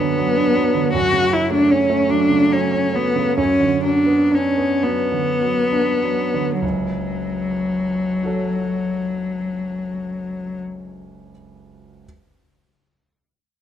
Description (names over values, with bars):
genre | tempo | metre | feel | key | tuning
classical, romantic duo for cello and grand piano | 31-52 BPM (dotted quarters) | 6/8 | rubato | F# minor | A4 = 440 Hz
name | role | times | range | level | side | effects
clear cello | melody | 0.0-10.6 s | F#3 to F#4 | -18 LUFS | left 2 dB | none
clear grand piano | accompaniment | 0.0-12.1 s | F#1 to C#5 | -23 LUFS | right 5 dB | none
room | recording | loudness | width
light reverb | close, detailed microphones | -17 LUFS | side -10 dB against mid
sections
0.0-6.6 A section; 6.6-9.8 B section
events
slowing down 0.0-6.6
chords
0.0 Bm/F#; 0.9 F#m; 3.4 Bm/F#; 6.6 F#m